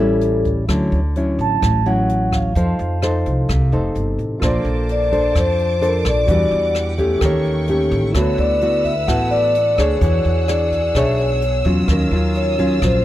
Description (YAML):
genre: bossa nova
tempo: 129 BPM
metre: 4/4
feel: straight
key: unclear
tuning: A4 = 440 Hz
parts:
  - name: vibraphone with soft mallets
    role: melody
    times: 0.0-13.0 s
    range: A4 to A5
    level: -19 LUFS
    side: equal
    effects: none
  - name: nylon-string guitar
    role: accompaniment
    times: 0.0-13.0 s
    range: A2 to Db5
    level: -20 LUFS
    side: left 1 dB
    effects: none
  - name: upright bass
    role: bass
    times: 0.0-13.0 s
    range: F1 to F2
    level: -20 LUFS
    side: equal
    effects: none
  - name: jazz brush drum kit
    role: drums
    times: 0.2-12.9 s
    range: hi-hat, kick drum, rim click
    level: -24 LUFS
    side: equal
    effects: none
  - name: warm concert grand piano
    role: accompaniment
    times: 4.4-13.0 s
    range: Bb3 to C#6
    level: -28 LUFS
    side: right 3 dB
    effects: none
  - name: rich symphonic violin section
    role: sustained chords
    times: 4.4-13.0 s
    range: G3 to E6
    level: -30 LUFS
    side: equal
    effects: none
room: little or no reverb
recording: dry, close 1970s-style studio recording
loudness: -15 LUFS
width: side -14 dB against mid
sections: 0.0-4.4 A section; 4.4-13.0 B section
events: none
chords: 0.0 A7; 0.7 Dmaj9; 2.6 F7; 4.4 Bbmaj9; 6.3 Em9; 7.2 Eb7#11; 8.2 D69; 10.0 E13; 11.9 Ebm9